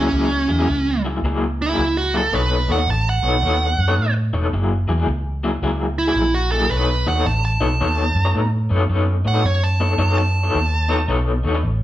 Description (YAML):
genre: electric blues shuffle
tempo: 110 BPM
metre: 4/4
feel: swing 64% on 8ths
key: unclear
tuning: A4 = 440 Hz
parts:
  - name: dark smooth lead guitar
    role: melody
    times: 0.0-11.2 s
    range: C#4 to A5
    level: -21 LUFS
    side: right 3 dB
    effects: overdrive
  - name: electric guitar through a small old amp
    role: riff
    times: 0.0-11.7 s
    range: F#3 to C#5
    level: -23 LUFS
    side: left 3 dB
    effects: tremolo
  - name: vintage muted fingered electric bass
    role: bass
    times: 0.0-11.8 s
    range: E1 to A2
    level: -20 LUFS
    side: equal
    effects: none
room: moderate large studio reverb, RT60 0.9 s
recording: band playing live in one room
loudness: -17 LUFS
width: side -13 dB against mid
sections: 0.0-11.8 A section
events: lead electric guitar solo 0.0-11.8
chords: 0.0 F#9; 2.3 B9; 4.5 F#9; 6.7 B9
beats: | 0.14 0.68 1.23 1.78 | 2.33 2.87 3.42 3.97 | 4.52 5.06 5.61 6.16 | 6.70 7.25 7.80 8.35 | 8.89 9.44 9.98 10.53 | 11.08 11.63